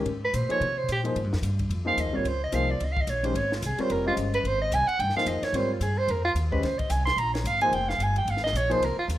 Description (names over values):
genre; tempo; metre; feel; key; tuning
modal jazz; 219 BPM; 4/4; swing 59% on 8ths; Db lydian; A4 = 441 Hz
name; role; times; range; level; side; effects
warm upright piano; accompaniment; 0.0-8.8 s; Eb3 to Eb5; -30 LUFS; left 2 dB; none
upright bass; bass; 0.0-9.2 s; F1 to C3; -29 LUFS; equal; none
compact cocktail drum kit; drums; 0.1-9.2 s; hi-hat, kick drum, ride cymbal, snare drum; -37 LUFS; left 1 dB; none
warm soprano saxophone; melody; 0.2-9.1 s; F4 to C6; -26 LUFS; right 2 dB; none
room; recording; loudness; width
light reverb; none; -24 LUFS; side -14 dB against mid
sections
0.0-9.2 A section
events
soprano saxophone solo 0.0-9.2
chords
0.1 Fmadd9; 2.3 Dbmaj9#11; 4.4 Fmadd9; 6.6 Dbmaj7#11 (rootless)